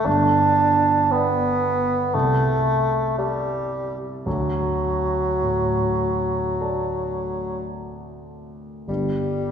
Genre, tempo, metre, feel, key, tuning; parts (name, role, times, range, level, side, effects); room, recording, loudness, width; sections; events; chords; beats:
classical, romantic duo for bassoon and grand piano; 51-59 BPM; 4/4; rubato; A4 = 440 Hz
mellow bassoon; melody; 0.0-9.5 s; F#3 to D4; -21 LUFS; right 1 dB
dark concert grand piano; accompaniment; 0.0-9.5 s; G1 to A5; -25 LUFS; right 1 dB
wet concert hall reverb, RT60 1.8 s; heard from further back in the room; -19 LUFS; side -7 dB against mid
0.0-9.5 A section
0.1 G; 2.1 Am/C; 4.3 D; 8.9 N.C.
| 0.06 1.12 2.14 3.18 | 4.26 5.42 6.59 7.74 | 8.88